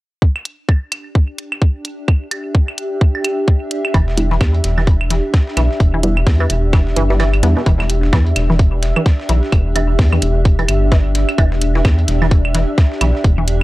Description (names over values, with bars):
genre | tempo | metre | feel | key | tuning
minimal techno | 129 BPM | 4/4 | swing 59% on 16ths | E minor | A4 = 440 Hz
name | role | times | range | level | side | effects
electronic kick drum | drums | 0.2-13.4 s | none | -12 LUFS | equal | overdrive
granular cloud pad | texture | 1.5-13.6 s | D4 to E5 | -22 LUFS | equal | built-in reverb, sidechain pumping
claves | percussion | 0.4-13.1 s | none | -24 LUFS | right 3 dB | tape echo
electronic hi-hat | drums | 0.5-13.6 s | none | -23 LUFS | equal | overdrive
resonant blip pluck | riff | 3.9-13.4 s | B2 to B3 | -22 LUFS | equal | phaser, sidechain pumping, tape echo
rubbery square bass | bass | 3.9-13.6 s | E1 to E2 | -16 LUFS | equal | sidechain pumping
dusty soul sampler-style drum kit | drums | 3.9-13.6 s | hi-hat, snare drum | -32 LUFS | equal | high-pass filter on hats, high-pass filter on snare
filtered dub chord stab | stabs | 4.2-7.6 s | G3 to E4 | -22 LUFS | right 1 dB | chorus, tape echo
room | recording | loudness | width
little or no reverb | dry, gritty hardware recording, cassette tape | -13 LUFS | side -18 dB against mid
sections
0.2-7.7 A section; 7.7-13.6 B section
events
kick drops out 7.2-7.7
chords
0.2 Em7